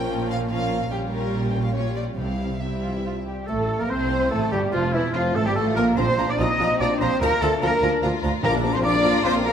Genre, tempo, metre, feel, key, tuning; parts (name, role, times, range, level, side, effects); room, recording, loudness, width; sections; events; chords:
quick classical-period movement for symphony orchestra; 145 BPM; 3/4; rubato; A4 = 440 Hz
warm chamber violin section; melody; 0.0-9.5 s; E4 to D6; -32 LUFS; left 2 dB
rich chamber violin section; second line; 0.0-9.5 s; A3 to Bb4; -31 LUFS; left 5 dB
warm studio viola section; accompaniment; 0.0-9.5 s; E3 to Bb4; -28 LUFS; right 1 dB
warm chamber cello section; bass; 0.0-9.5 s; Bb2 to Eb5; -26 LUFS; right 2 dB
warm chamber double bass section; bass; 0.0-9.5 s; E1 to D2; -27 LUFS; right 2 dB
timpani; percussion; 2.2-2.8, 6.0-9.0 s; Bb2 to C3; -32 LUFS; equal
mellow hollow silver concert flute; second line; 2.8-9.5 s; E5 to Eb6; -32 LUFS; left 1 dB
mellow French horn section; sustained chords; 2.8-9.5 s; E3 to Eb4; -28 LUFS; left 4 dB
clear oboe; second line; 3.5-9.5 s; E4 to Bb5; -32 LUFS; equal
mellow bassoon; accompaniment; 3.5-9.5 s; E3 to C4; -29 LUFS; right 1 dB
wet scoring stage reverb, RT60 2.0 s; -20 LUFS; side -8 dB against mid
0.0-3.5 A section; 3.5-9.5 B section
0.0 Bbm; 0.9 Gm7b5/Bb; 2.2 C; 3.5 Gsus24; 4.7 F; 6.0 Bb; 7.2 Bb/D; 8.4 Bb